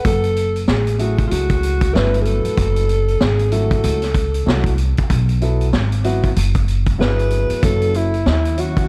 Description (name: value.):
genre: hip hop, jazz-hop.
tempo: 95 BPM.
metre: 4/4.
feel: swing 60% on 16ths.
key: F# dorian.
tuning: A4 = 440 Hz.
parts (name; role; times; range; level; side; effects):
dark concert grand piano; accompaniment; 0.0-8.8 s; F#3 to F#5; -27 LUFS; equal; none.
vintage drum kit; drums; 0.0-8.9 s; hi-hat, kick drum, snare drum; -23 LUFS; equal; none.
dark alto saxophone; melody; 0.1-8.9 s; E4 to B4; -24 LUFS; equal; analog delay.
upright bass; bass; 0.1-8.9 s; F#1 to D#2; -20 LUFS; equal; none.
room: small room ambience.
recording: dry, gritty hardware recording, vinyl crackle.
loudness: -17 LUFS.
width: mono.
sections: 0.0-8.9 A section.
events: none.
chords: 0.0 F#m9; 5.1 Bsus4; 7.6 F#m7.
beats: | 0.05 0.68 1.31 1.94 | 2.57 3.21 3.84 4.47 | 5.10 5.73 6.36 6.99 | 7.63 8.26.